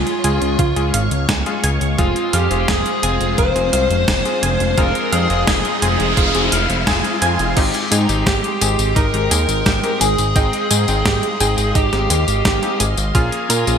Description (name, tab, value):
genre	synthwave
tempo	86 BPM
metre	4/4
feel	straight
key	unclear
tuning	A4 = 440 Hz
part	smooth overdriven lead guitar	melody	0.0-13.8 s	Eb4 to C5	-21 LUFS	equal	vintage 12-bit sampler grit, ping-pong delay
part	FM electric piano with soft pad layer	second line	0.0-13.8 s	Eb4 to C5	-28 LUFS	left 2 dB	none
part	string machine, full ensemble	sustained chords	0.0-13.8 s	Ab3 to Db6	-25 LUFS	equal	ensemble chorus, sidechain pumping
part	analog pluck	arpeggios	0.0-13.8 s	Ab3 to Ab5	-25 LUFS	right 2 dB	chorus, ping-pong delay
part	warm electric grand piano	stabs	0.0-13.8 s	Ab3 to G5	-25 LUFS	left 5 dB	low-pass filter, ping-pong delay
part	fat analog bass	bass	0.0-13.8 s	F1 to Bb2	-20 LUFS	equal	none
part	riser and noise sweep	sound effects	1.8-7.6 s	none	-25 LUFS	right 1 dB	none
part	clean 12-bit digital drum machine	drums	0.1-13.8 s	crash cymbal, hi-hat, snare drum, tambourine	-21 LUFS	equal	gated reverb
part	electronic kick drum	drums	0.6-13.3 s	none	-20 LUFS	equal	none
room	moderate plate reverb, RT60 1.7 s, digital ambience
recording	bright 1980s-style digital production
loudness	-14 LUFS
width	side -7 dB against mid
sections	0.0-7.6 A section; 7.6-13.8 B section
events	riser 1.8-7.6; noise sweep 4.8-7.6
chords	0.0 Db; 2.0 Fm; 7.6 Abmaj7; 13.1 Bbm7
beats	0.59 1.29 | 1.99 2.68 3.38 4.08 | 4.78 5.47 6.17 6.87 | 7.57 8.27 8.96 9.66 | 10.36 11.06 11.75 12.45 | 13.15